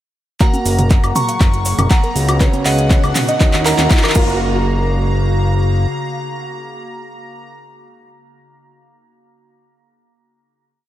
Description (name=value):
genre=progressive house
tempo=120 BPM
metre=4/4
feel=straight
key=F# major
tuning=A4 = 442 Hz
part: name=glassy synth bell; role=melody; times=0.4-7.5 s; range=D#5 to C#6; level=-24 LUFS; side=right 1 dB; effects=chorus, phaser, dub echo
part: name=soft supersaw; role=second line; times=0.4-7.5 s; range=F#5 to C#6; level=-29 LUFS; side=right 1 dB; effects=sidechain pumping, dub echo
part: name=evolving wavetable pad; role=sustained chords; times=1.2-7.5 s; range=C#3 to F#5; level=-26 LUFS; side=left 2 dB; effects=chorus, built-in reverb, sidechain pumping
part: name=soft round pluck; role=arpeggios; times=0.4-7.5 s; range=C#4 to E#5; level=-25 LUFS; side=left 1 dB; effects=chorus, sidechain pumping, dub echo
part: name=dark grand piano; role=stabs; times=0.4-7.5 s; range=C#3 to F#5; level=-24 LUFS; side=right 2 dB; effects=sidechain pumping, low-pass filter, dub echo
part: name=electronic kick drum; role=drums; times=0.4-4.3 s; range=none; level=-13 LUFS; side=equal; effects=overdrive
part: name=pop drum kit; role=drums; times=0.4-4.3 s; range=crash cymbal, handclaps, hi-hat, woodblock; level=-21 LUFS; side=left 1 dB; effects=overdrive, high-pass filter on snare, high-pass filter on hats, high-pass filter on perc, high-pass filter on cymbals, high-pass filter on room
part: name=maracas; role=percussion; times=0.4-4.4 s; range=none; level=-28 LUFS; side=right 2 dB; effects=none
part: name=riser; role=sound effects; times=1.6-4.4 s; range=none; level=-27 LUFS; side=equal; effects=none
part: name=electronic congas and toms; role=percussion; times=0.5-3.9 s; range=none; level=-21 LUFS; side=right 1 dB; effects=sidechain pumping on perc, sidechain pumping on toms
part: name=fat analog bass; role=bass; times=0.7-5.9 s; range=F#1 to D#2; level=-17 LUFS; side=equal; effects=sidechain pumping
room=light reverb, digital ambience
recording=none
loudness=-12 LUFS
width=side -13 dB against mid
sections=0.4-4.4 build; 4.4-8.4 final hit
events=build-up 0.4-4.4; drum fill 0.4-4.4; filter sweep on synth pluck 0.4-4.4; filter sweep on grand piano 0.4-4.4; riser 1.6-4.4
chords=0.4 F#; 2.4 C#7sus4; 3.4 D#m7; 4.2 F#maj7